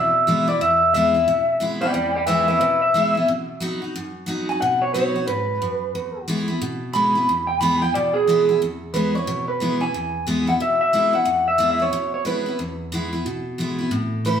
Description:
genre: rock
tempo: 180 BPM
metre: 4/4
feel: swing 62% on 8ths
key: E major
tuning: A4 = 441 Hz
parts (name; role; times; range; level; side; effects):
- electric guitar through a small old amp; melody; 0.0-14.4 s; G#4 to B5; -19 LUFS; equal; none
- picked steel-string acoustic guitar; accompaniment; 0.0-14.4 s; E2 to F#4; -24 LUFS; equal; none
room: wet large studio reverb, RT60 1.2 s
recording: band playing live in one room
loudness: -18 LUFS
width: side -8 dB against mid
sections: 0.0-8.6 A section; 8.6-14.4 B section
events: clean electric guitar solo 0.0-8.6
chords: 0.0 E; 3.3 B; 5.9 E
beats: 0.28 | 0.62 0.95 1.28 1.62 | 1.95 2.28 2.62 2.95 | 3.28 3.62 3.95 4.28 | 4.61 4.95 5.28 5.61 | 5.95 6.28 6.61 6.94 | 7.27 7.61 7.94 8.27 | 8.60 8.94 9.27 9.60 | 9.93 10.27 10.60 10.93 | 11.26 11.60 11.93 12.26 | 12.59 12.93 13.26 13.59 | 13.93 14.26

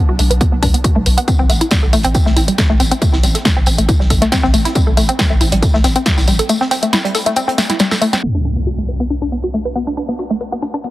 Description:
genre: driving peak-time techno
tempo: 138 BPM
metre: 4/4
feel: straight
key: unclear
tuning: A4 = 440 Hz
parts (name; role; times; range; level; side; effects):
- woody wave-folded pluck; riff; 0.0-10.9 s; G3 to B4; -17 LUFS; left 1 dB; chorus, tube saturation, sidechain pumping, tape echo
- saturated sub bass; bass; 0.1-6.4 s; A1 to B1; -16 LUFS; equal; tube saturation, sidechain pumping, low-pass filter
- techno drum kit; drums; 0.2-10.9 s; hi-hat, snare drum; -19 LUFS; equal; none
- electronic kick drum; drums; 0.4-6.2 s; none; -14 LUFS; equal; none
- warm soul drum kit; drums; 1.3-8.2 s; hi-hat, snare drum, tambourine; -26 LUFS; equal; sidechain pumping on hats, high-pass filter on hats, high-pass filter on snare, sidechain pumping on perc, high-pass filter on perc, high-pass filter on room
- impact; sound effects; 8.2-10.0 s; none; -20 LUFS; equal; none
room: light reverb, small room reverb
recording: heavily compressed radio sound, multiband compression, low-pass filter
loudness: -12 LUFS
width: side -16 dB against mid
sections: 0.0-8.2 A section; 8.2-10.9 B section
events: drum fill 7.6-8.2; band accent 8.1; impact 8.2-10.0; filter sweep on synth arpeggio sound 8.2-10.9; filter sweep 8.2-10.9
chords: 0.0 N.C.; 1.3 Am; 8.2 Bm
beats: 0.41 0.84 | 1.28 1.71 2.15 2.58 | 3.02 3.45 3.89 4.32 | 4.76 5.19 5.62 6.06 | 6.50 6.93 7.37 7.80 | 8.23 8.67 9.10 9.54 | 9.97 10.41 10.84

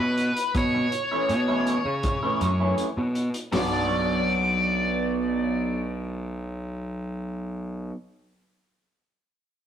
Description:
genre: psychedelic rock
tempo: 80 BPM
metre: 4/4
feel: straight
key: B minor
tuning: A4 = 439 Hz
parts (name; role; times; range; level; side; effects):
- octave-fuzz lead guitar; melody; 0.0-7.3 s; B4 to D5; -27 LUFS; equal; wah, distortion
- electric guitar through a small old amp; riff; 0.0-8.0 s; B2 to F#4; -29 LUFS; right 1 dB; phaser
- fuzz picked electric bass; bass; 0.0-7.9 s; B1 to C#3; -28 LUFS; equal; overdrive
- vintage drum kit; drums; 0.2-3.7 s; hi-hat, kick drum, snare drum, toms; -32 LUFS; equal; none
room: moderate stone room reverb, RT60 1.3 s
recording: rough rehearsal-room recording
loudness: -23 LUFS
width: side -9 dB against mid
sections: 0.0-3.5 A section; 3.5-6.5 B section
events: none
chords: 0.0 A; 3.5 Bm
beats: | 0.55 1.29 2.04 2.79 | 3.53 4.28 5.02 5.76

